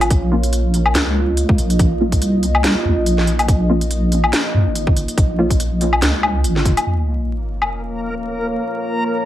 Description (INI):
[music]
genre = deep dubstep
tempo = 142 BPM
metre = 4/4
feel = swing 56% on 16ths, half-time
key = Bb minor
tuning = A4 = 438 Hz
[part]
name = deep dark ambient pad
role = sustained chords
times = 0.0-9.3 s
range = Bb3 to Eb5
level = -24 LUFS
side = right 1 dB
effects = chorus, built-in reverb
[part]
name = deep soft wobble bass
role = bass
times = 0.0-6.8 s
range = F1 to G2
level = -17 LUFS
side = equal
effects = chorus
[part]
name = garage drum kit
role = drums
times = 0.0-7.7 s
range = hi-hat, snare drum, woodblock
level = -20 LUFS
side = left 1 dB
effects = none
[part]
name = electronic kick drum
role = drums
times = 0.1-6.7 s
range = none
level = -16 LUFS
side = equal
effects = none
[part]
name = filtered dub chord stab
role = stabs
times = 0.3-5.5 s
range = Bb3 to F4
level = -23 LUFS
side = equal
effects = phaser, ensemble chorus, cassette tape, dub echo
[part]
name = sub drop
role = sound effects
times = 6.9-8.6 s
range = none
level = -23 LUFS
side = equal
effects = none
[part]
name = backwards swelling texture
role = texture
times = 7.8-9.3 s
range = Bb3 to Bb4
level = -22 LUFS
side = left 1 dB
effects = built-in reverb
[sound]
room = light reverb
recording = vinyl crackle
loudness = -15 LUFS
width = side -13 dB against mid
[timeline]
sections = 0.0-6.9 A section; 6.9-9.3 B section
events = impact 6.9-8.6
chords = 0.0 Bbm